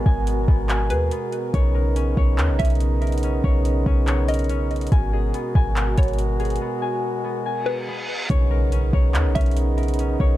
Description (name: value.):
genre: hip hop, atmospheric cloud-rap.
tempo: 142 BPM.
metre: 4/4.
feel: half-time.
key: B major.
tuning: A4 = 441 Hz.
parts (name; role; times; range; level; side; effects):
dark brass ensemble; sustained chords; 0.0-10.4 s; B2 to A#4; -26 LUFS; right 2 dB; sidechain pumping.
concert harp; arpeggios; 0.0-10.4 s; B3 to G#5; -30 LUFS; left 8 dB; tape echo.
clean 808-style bass; bass; 0.0-10.4 s; G#1 to D#2; -20 LUFS; equal; none.
smooth R&B drum kit; drums; 0.1-10.3 s; handclaps, hi-hat, kick drum; -22 LUFS; equal; none.
hollow square pluck; melody; 0.9-9.6 s; B4 to E5; -32 LUFS; equal; chorus, tape echo.
reverse cymbal and impact; sound effects; 7.6-10.0 s; none; -32 LUFS; right 1 dB; none.
room: digital ambience.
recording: none.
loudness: -19 LUFS.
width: side -15 dB against mid.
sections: 0.0-8.3 A section; 8.3-10.4 B section.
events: break 6.6-8.3; reverse cymbal 7.6-8.3; impact 8.3-10.0.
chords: 0.0 G#m9; 1.5 Bmaj9; 4.9 G#m9; 8.3 Bmaj9.